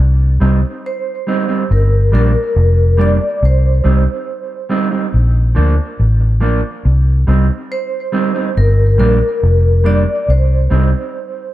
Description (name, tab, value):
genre	roots reggae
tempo	70 BPM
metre	4/4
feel	straight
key	C dorian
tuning	A4 = 440 Hz
part	vintage muted fingered electric bass	bass	0.0-10.9 s	F1 to D2	-11 LUFS	equal	none
part	mellow electric guitar	accompaniment	0.4-10.9 s	F3 to Eb4	-19 LUFS	right 4 dB	spring reverb, tape echo, plate reverb
part	vibraphone with medium mallets	melody	0.9-11.5 s	Bb4 to D5	-19 LUFS	left 1 dB	tape echo, plate reverb
room	light reverb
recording	none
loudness	-11 LUFS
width	side -14 dB against mid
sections	0.0-11.5 A section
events	none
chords	0.0 Cm; 1.7 Gm; 3.4 Cm; 5.1 Bb; 6.8 Cm; 8.6 Gm; 10.3 Cm